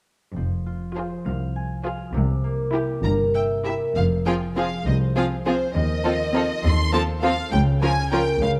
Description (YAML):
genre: cinematic, playful, whimsical film cue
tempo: 67 BPM (dotted quarters)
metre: 6/8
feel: straight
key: F minor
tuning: A4 = 441 Hz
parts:
  - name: concert harp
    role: arpeggios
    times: 0.4-8.6 s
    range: C3 to Ab5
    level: -28 LUFS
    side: equal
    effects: none
  - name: warm studio cello section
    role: bass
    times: 0.4-8.6 s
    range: C2 to G2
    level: -30 LUFS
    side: equal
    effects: none
  - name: warm studio double bass section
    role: bass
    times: 0.4-8.6 s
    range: F1 to Eb2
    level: -28 LUFS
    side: equal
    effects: none
  - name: warm studio violin section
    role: melody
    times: 1.0-8.5 s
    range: Bb4 to C6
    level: -30 LUFS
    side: equal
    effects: none
  - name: warm studio violin section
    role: second line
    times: 1.0-8.2 s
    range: F4 to Bb4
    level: -30 LUFS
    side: equal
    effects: none
  - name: rich studio viola section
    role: accompaniment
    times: 1.0-8.2 s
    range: F3 to F4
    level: -30 LUFS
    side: equal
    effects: none
room: light reverb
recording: close, detailed microphones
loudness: -23 LUFS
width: mono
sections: 0.4-4.0 A section; 4.0-8.6 B section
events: none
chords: 0.4 Fm; 2.1 C7; 4.0 Fm; 5.8 F7/Eb; 7.5 Bbm/Db